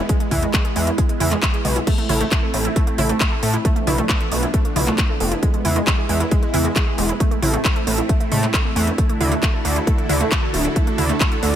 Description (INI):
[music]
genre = uplifting trance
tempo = 135 BPM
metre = 4/4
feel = straight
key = A harmonic minor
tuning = A4 = 440 Hz
[part]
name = supersaw pad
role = sustained chords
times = 0.0-11.6 s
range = D3 to A4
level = -27 LUFS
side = right 1 dB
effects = phaser, sidechain pumping
[part]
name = wide unison pluck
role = arpeggios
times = 0.0-11.5 s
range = A2 to A4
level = -24 LUFS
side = right 2 dB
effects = sidechain pumping, dub echo
[part]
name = electronic kick drum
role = drums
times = 0.1-11.3 s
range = none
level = -20 LUFS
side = equal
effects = none
[part]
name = house drum kit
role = drums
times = 0.1-11.5 s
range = crash cymbal, handclaps, hi-hat, toms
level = -24 LUFS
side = left 1 dB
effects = none
[part]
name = gritty driven synth bass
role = bass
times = 0.3-11.6 s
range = D1 to A2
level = -21 LUFS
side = equal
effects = sidechain pumping
[sound]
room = light reverb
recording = none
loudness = -16 LUFS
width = side -10 dB against mid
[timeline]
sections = 0.0-11.6 A section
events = none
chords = 0.0 E; 1.9 Am; 3.6 Bdim; 5.4 E; 7.2 Am; 9.0 Dadd9